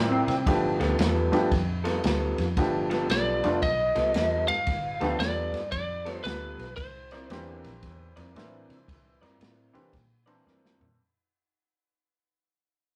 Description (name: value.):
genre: electric blues shuffle.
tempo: 114 BPM.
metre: 4/4.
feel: swing 64% on 8ths.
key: unclear.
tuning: A4 = 444 Hz.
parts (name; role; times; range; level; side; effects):
clean lap steel guitar; second line; 0.0-0.5 s; C4; -31 LUFS; equal; none.
electric guitar through a small old amp; riff; 0.0-10.9 s; G3 to D5; -34 LUFS; equal; none.
vintage muted fingered electric bass; bass; 0.0-11.0 s; F1 to C3; -35 LUFS; equal; none.
vintage drum kit; drums; 0.3-10.9 s; kick drum, ride cymbal, snare drum, toms; -33 LUFS; equal; none.
clear grand piano; accompaniment; 0.5-10.9 s; E3 to A5; -30 LUFS; equal; none.
lightly driven lead guitar; melody; 3.1-10.4 s; B4 to F5; -30 LUFS; equal; none.
room: wet studio reverb, RT60 0.6 s.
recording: rough rehearsal-room recording.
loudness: -26 LUFS.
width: mono.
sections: 0.0-11.0 A section.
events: fade-out 0.0-11.0; drum fill 10.5-11.0.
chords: 0.5 G9; 6.8 C9.